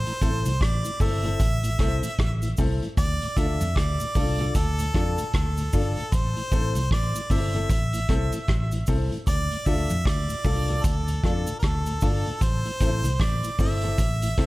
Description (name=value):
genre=roots reggae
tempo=76 BPM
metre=4/4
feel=swing 60% on 16ths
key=D minor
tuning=A4 = 441 Hz
part: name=clear harmonica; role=melody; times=0.0-14.5 s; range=A4 to E5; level=-30 LUFS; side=right 1 dB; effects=tape echo
part: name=vintage muted picked electric bass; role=bass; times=0.0-14.5 s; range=G1 to F2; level=-26 LUFS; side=equal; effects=none
part: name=mellow tonewheel organ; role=accompaniment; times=0.1-14.5 s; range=D2 to F4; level=-35 LUFS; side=equal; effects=chorus vibrato, slow rotary speaker
part: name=vintage drum kit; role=drums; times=0.1-14.5 s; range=hi-hat, kick drum, rim click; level=-26 LUFS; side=equal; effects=none
part: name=dark baby grand piano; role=stabs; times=0.2-14.5 s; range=C4 to A4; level=-33 LUFS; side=left 4 dB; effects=none
part: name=cabasa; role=percussion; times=0.2-14.4 s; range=none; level=-40 LUFS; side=right 2 dB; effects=none
room=small room ambience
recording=none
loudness=-22 LUFS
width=side -19 dB against mid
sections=0.0-14.5 A section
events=none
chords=0.0 Am; 3.0 Dm; 6.1 Am; 9.3 Dm; 12.4 Am